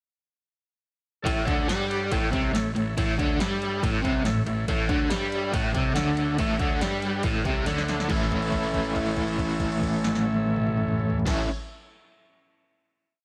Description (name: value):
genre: garage rock duo or trio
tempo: 140 BPM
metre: 4/4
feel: straight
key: A major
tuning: A4 = 440 Hz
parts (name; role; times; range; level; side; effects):
- combo organ; sustained chords; 1.2-11.4 s; A4 to F#5; -37 LUFS; equal; none
- biting overdriven guitar; riff; 1.2-11.5 s; A2 to E4; -28 LUFS; equal; tremolo
- fuzz picked electric bass; bass; 1.3-11.4 s; A1 to G2; -35 LUFS; equal; overdrive
- punchy analog drum machine; drums; 1.3-11.4 s; crash cymbal, kick drum, ride cymbal, snare drum, toms; -32 LUFS; equal; none
room: light reverb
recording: none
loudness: -26 LUFS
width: mono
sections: 1.3-8.1 riff; 8.1-11.5 final chord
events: drum fill 7.7-8.1; held note 8.1-11.3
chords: 1.3 A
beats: | 1.25 1.69 2.11 2.54 | 2.97 3.40 3.83 4.25 | 4.68 5.10 5.53 5.96 | 6.38 6.81 7.23 7.66 | 8.09 8.52 8.94 9.37 | 9.80 10.23 10.66 11.09